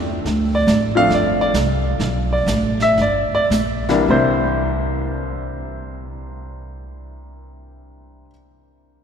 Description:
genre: jazz piano trio.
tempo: 100-143 BPM.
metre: 4/4.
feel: swing 65% on 8ths.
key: C mixolydian.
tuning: A4 = 439 Hz.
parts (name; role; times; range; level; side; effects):
upright bass; bass; 0.0-8.2 s; G1 to E2; -21 LUFS; right 1 dB; none.
vintage brush drum kit; drums; 0.3-4.6 s; brushed snare drum, hi-hat, snare drum; -30 LUFS; right 2 dB; none.
clear baby grand piano; melody; 0.5-8.3 s; C2 to F5; -18 LUFS; left 1 dB; none.
room: wet cathedral reverb, RT60 5.1 s.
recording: recorded in a church or concert hall.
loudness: -16 LUFS.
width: side -7 dB against mid.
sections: 0.0-4.1 A section; 4.1-8.9 B section.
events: slowing down 0.3-4.1.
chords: 0.3 Dm; 1.1 G9sus4; 2.0 Asus24; 3.0 G5; 4.1 C9.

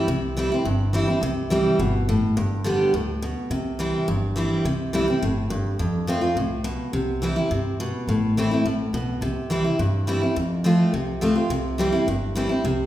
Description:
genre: bluegrass.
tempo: 210 BPM.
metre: 4/4.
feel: straight.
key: C major.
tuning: A4 = 438 Hz.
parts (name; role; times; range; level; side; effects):
picked steel-string acoustic guitar; accompaniment; 0.0-12.9 s; F2 to G4; -21 LUFS; equal; none.
upright bass; bass; 0.1-12.9 s; G1 to G2; -29 LUFS; equal; none.
room: wet recital hall reverb, RT60 1.5 s.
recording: recorded in a church or concert hall.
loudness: -21 LUFS.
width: side -13 dB against mid.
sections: 0.0-4.7 A section; 4.7-12.9 B section.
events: none.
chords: 0.0 C; 2.4 G; 3.5 C; 5.8 F; 6.9 C; 8.1 Am; 9.2 C; 10.4 F; 11.5 C.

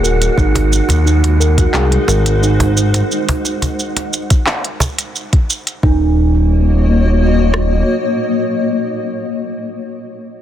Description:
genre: organic downtempo.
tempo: 88 BPM.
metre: 4/4.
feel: straight.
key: Eb dorian.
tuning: A4 = 436 Hz.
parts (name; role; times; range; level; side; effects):
granular cloud pad; sustained chords; 0.0-9.3 s; Ab3 to Eb5; -19 LUFS; left 2 dB; built-in reverb, sidechain pumping.
steel tongue drum; arpeggios; 0.0-6.2 s; Eb4 to Bb4; -20 LUFS; right 3 dB; digital delay.
smooth synth bass; bass; 0.0-7.8 s; Eb1 to Eb2; -13 LUFS; equal; tube saturation, sidechain pumping.
organic electronic drum kit; drums; 0.0-5.8 s; handclaps, hi-hat, shaker; -19 LUFS; right 1 dB; none.
wind-like tuned noise texture; texture; 0.0-3.1 s; Gb5; -28 LUFS; right 1 dB; built-in reverb.
organic electronic drum kit; drums; 0.4-7.7 s; kick drum, rim click; -12 LUFS; equal; soft clipping on snare.
cajon; percussion; 0.6-4.9 s; none; -19 LUFS; right 1 dB; none.
room: light reverb.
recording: dense, heavily limited modern master.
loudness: -12 LUFS.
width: side -11 dB against mid.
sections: 0.0-5.8 A section; 5.8-8.6 B section.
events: none.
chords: 0.4 Ab; 5.8 Ebm7.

